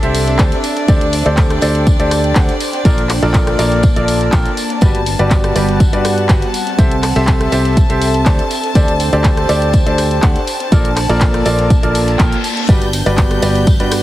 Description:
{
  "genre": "piano house",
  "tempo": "122 BPM",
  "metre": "4/4",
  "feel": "straight",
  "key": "unclear",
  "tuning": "A4 = 440 Hz",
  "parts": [
    { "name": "clear studio violin section", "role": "sustained chords", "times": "0.0-14.0 s", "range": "D4 to G6", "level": "-23 LUFS", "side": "left 1 dB", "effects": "sidechain pumping" },
    { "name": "clear concert grand piano", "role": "riff", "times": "0.0-14.0 s", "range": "G3 to A5", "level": "-17 LUFS", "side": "equal", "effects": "sidechain pumping, tape echo" },
    { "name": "fingered electric bass", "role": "bass", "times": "0.0-14.0 s", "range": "G1 to G2", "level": "-18 LUFS", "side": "equal", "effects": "sidechain pumping" },
    { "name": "house drum kit", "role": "drums", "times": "0.0-14.0 s", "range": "handclaps, hi-hat, ride cymbal, rim click", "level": "-22 LUFS", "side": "left 1 dB", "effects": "none" },
    { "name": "airy breathy pad", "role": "texture", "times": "0.0-14.0 s", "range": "G3 to A5", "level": "-22 LUFS", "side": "right 1 dB", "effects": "chorus, sidechain pumping" },
    { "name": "crunchy breakbeat drum kit", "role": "drums", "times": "0.1-14.0 s", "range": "hi-hat, snare drum, tambourine", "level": "-31 LUFS", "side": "equal", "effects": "sidechain pumping on hats, high-pass filter on hats, high-pass filter on snare, sidechain pumping on perc, high-pass filter on perc, high-pass filter on room" },
    { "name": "electronic kick drum", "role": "drums", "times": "0.4-13.8 s", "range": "none", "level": "-12 LUFS", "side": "equal", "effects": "overdrive" },
    { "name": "reverse cymbal", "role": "sound effects", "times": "12.0-12.7 s", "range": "none", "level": "-25 LUFS", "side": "left 5 dB", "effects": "none" },
    { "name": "tambourine", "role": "percussion", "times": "12.7-14.0 s", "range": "none", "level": "-32 LUFS", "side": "right 1 dB", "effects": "none" }
  ],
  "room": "light reverb",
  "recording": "heavily compressed radio sound, multiband compression",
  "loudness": "-11 LUFS",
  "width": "side -15 dB against mid",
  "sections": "0.0-14.0 A section",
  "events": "reverse cymbal 12.0-12.7",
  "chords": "0.0 C6; 0.6 D7sus4; 2.9 Bbmaj7; 4.8 Gmaj7; 6.5 C6; 8.5 D7sus4; 10.7 Bbmaj7; 12.7 Gmaj7"
}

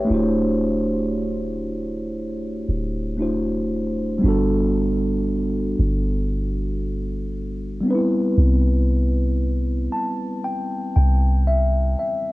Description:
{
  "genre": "contemporary R&B",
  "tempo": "58 BPM",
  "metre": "4/4",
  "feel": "swing 54% on 16ths",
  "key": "unclear",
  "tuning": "A4 = 441 Hz",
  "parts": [
    { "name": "mellow tine electric piano", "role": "accompaniment", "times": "0.0-12.3 s", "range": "G3 to A5", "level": "-22 LUFS", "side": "equal", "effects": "lush chorus, cassette tape" },
    { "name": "soft 808-style bass", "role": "bass", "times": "0.0-12.0 s", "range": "D1 to C2", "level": "-22 LUFS", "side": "equal", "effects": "none" }
  ],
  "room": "digital ambience",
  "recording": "home recording on cassette",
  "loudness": "-19 LUFS",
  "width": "side -19 dB against mid",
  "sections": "0.0-4.2 A section; 4.2-12.3 B section",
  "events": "tine electric piano fill 9.4-12.3",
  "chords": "0.1 D9; 4.2 Gmaj9; 7.9 Cmaj7"
}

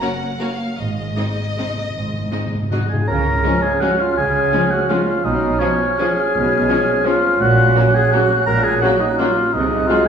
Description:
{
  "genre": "classical, orchestral ballroom waltz",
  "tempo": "148-182 BPM",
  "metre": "3/4",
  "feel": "rubato",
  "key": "Db major",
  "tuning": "A4 = 441 Hz",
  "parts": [
    { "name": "warm chamber violin section", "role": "melody", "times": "0.0-10.0 s", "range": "Db4 to Gb5", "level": "-31 LUFS", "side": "left 3 dB", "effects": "none" },
    { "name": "rich chamber violin section", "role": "second line", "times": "0.0-10.0 s", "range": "Ab3 to Eb5", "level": "-29 LUFS", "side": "left 3 dB", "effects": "none" },
    { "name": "rich chamber viola section", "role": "accompaniment", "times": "0.0-10.0 s", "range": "F3 to Db4", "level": "-27 LUFS", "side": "right 1 dB", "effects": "none" },
    { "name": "dark chamber double bass section", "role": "bass", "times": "0.8-9.8 s", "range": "Ab1 to Db2", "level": "-23 LUFS", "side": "right 2 dB", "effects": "none" },
    { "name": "warm studio cello section", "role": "bass", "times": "0.8-9.8 s", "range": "Ab2 to Db3", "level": "-26 LUFS", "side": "right 1 dB", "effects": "none" },
    { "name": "timpani", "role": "percussion", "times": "0.8-3.0 s", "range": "Ab2", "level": "-25 LUFS", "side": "equal", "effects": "none" },
    { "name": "clear clarinet", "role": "second line", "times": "2.7-10.1 s", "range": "Db4 to Bb4", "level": "-22 LUFS", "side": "left 1 dB", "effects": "none" },
    { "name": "warm oboe", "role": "second line", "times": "2.7-10.1 s", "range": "Db5 to Bb5", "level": "-20 LUFS", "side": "left 1 dB", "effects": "none" },
    { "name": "mellow small flute group", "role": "second line", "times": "3.1-10.1 s", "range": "F6 to Gb6", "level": "-25 LUFS", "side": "left 3 dB", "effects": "none" },
    { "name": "warm bassoon", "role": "accompaniment", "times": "3.1-10.1 s", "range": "Ab3 to Db4", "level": "-22 LUFS", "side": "right 5 dB", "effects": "none" },
    { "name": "mellow French horn section", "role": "sustained chords", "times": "3.4-10.0 s", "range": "F3 to Gb4", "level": "-26 LUFS", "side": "left 3 dB", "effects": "none" }
  ],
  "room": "wet recital hall reverb, RT60 1.4 s",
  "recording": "recorded in a church or concert hall",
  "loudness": "-15 LUFS",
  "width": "side -7 dB against mid",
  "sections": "0.0-3.1 A section; 3.1-10.1 B section",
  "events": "timpani fill 0.8-3.1",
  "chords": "0.0 Gb; 0.8 Ab; 3.1 Db; 5.2 Db7/Cb; 7.4 Gb/Bb; 9.5 Ab7/C"
}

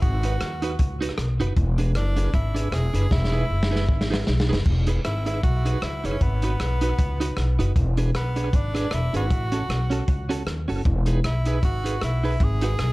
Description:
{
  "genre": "ska",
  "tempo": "155 BPM",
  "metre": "4/4",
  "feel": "swing 56% on 8ths",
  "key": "E major",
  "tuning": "A4 = 441 Hz",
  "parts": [
    { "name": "edgy tenor saxophone", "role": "melody", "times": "0.0-12.9 s", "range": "B3 to G#4", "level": "-31 LUFS", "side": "equal", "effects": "tape echo" },
    { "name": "upright bass", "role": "bass", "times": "0.0-12.9 s", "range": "E1 to D#2", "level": "-23 LUFS", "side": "equal", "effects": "none" },
    { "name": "crunchy breakbeat drum kit", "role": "drums", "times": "0.0-12.9 s", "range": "crash cymbal, hi-hat, kick drum, rim click, snare drum", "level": "-26 LUFS", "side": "equal", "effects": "none" },
    { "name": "clean electric guitar", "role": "accompaniment", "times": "0.2-12.7 s", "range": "C#4 to B4", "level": "-30 LUFS", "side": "right 3 dB", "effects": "tremolo" }
  ],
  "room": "small room ambience",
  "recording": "dark, warm production",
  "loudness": "-21 LUFS",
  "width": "side -20 dB against mid",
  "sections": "0.0-4.7 A section; 4.7-12.9 A section",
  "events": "drum fill 3.1-4.7",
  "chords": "0.0 G#m7; 1.6 E7; 3.1 Emaj7; 6.2 G#m7; 7.8 E7; 9.3 A6; 10.9 Emaj7; 12.4 G#m7"
}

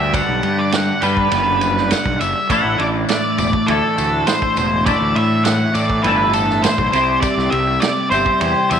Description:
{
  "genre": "psychedelic rock",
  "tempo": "102 BPM",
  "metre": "4/4",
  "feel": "straight",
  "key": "unclear",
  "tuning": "A4 = 440 Hz",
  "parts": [
    { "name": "octave-fuzz lead guitar", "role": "melody", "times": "0.0-8.8 s", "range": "A4 to F#5", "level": "-18 LUFS", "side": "right 1 dB", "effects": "distortion, slapback echo" },
    { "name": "twelve-string electric guitar", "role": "riff", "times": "0.0-8.8 s", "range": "G2 to C5", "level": "-19 LUFS", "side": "left 1 dB", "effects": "flanger, double-tracked left and right" },
    { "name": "fuzz fingered electric bass", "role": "bass", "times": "0.0-8.8 s", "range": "E1 to A2", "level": "-22 LUFS", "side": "equal", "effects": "overdrive" },
    { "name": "vintage drum kit", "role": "drums", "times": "0.1-8.8 s", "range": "kick drum, ride cymbal, snare drum", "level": "-24 LUFS", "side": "right 4 dB", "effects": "none" },
    { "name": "tambourine", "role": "percussion", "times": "0.1-8.8 s", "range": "none", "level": "-32 LUFS", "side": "left 18 dB", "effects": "none" }
  ],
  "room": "light reverb, small room ambience",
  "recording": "1960s-style stereo",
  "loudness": "-14 LUFS",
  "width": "side -8 dB against mid",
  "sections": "0.0-8.8 A section",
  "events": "none",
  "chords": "0.0 Gmaj7; 2.5 A7sus4; 6.9 C"
}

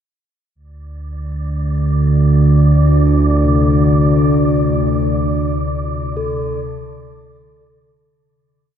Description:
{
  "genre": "dark ambient drone",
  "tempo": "64 BPM",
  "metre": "4/4",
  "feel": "straight",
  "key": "unclear",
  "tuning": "A4 = 439 Hz",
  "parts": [
    { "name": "analog drone", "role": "drone", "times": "1.0-8.2 s", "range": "D2 to D3", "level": "-13 LUFS", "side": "equal", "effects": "chorus" },
    { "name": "wind-like tuned noise texture", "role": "texture", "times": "1.4-8.1 s", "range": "D5", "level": "-25 LUFS", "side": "right 2 dB", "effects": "built-in reverb, shimmer reverb" },
    { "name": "quartz singing bowl", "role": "arpeggios", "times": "2.7-8.8 s", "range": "C3 to A4", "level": "-22 LUFS", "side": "left 2 dB", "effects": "ping-pong delay" }
  ],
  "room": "moderate cathedral reverb, RT60 5.6 s",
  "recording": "none",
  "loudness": "-12 LUFS",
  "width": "side -9 dB against mid",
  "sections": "0.6-8.1 A section",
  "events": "fade-in on synth texture 0.6-8.1; fade-in on singing bowl 0.6-8.1; fade-out 4.3-8.1",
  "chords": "0.6 Csus2/D; 4.3 D5"
}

